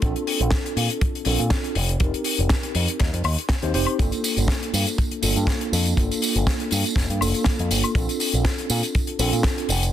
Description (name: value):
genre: nu-disco, nu disco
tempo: 121 BPM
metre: 4/4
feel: swing 54% on 16ths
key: unclear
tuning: A4 = 441 Hz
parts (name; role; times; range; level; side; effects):
- mellow tine electric piano; accompaniment; 0.0-9.7 s; Bb3 to C5; -26 LUFS; right 1 dB; medium stereo tremolo, low-pass filter, tape echo
- picked electric bass with an envelope filter; bass; 0.0-9.9 s; F1 to Bb2; -23 LUFS; equal; none
- kick drum; drums; 0.0-9.6 s; none; -22 LUFS; equal; none
- tight funk drum kit; drums; 0.0-9.9 s; hi-hat, snare drum, tambourine, woodblock; -26 LUFS; left 2 dB; none
room: light reverb, small room ambience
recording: dense, heavily limited modern master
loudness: -20 LUFS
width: side -11 dB against mid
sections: 0.0-9.9 A section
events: none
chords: 0.0 Bbmaj9; 1.8 F7sus4; 4.0 Gm9; 8.0 Bbmaj9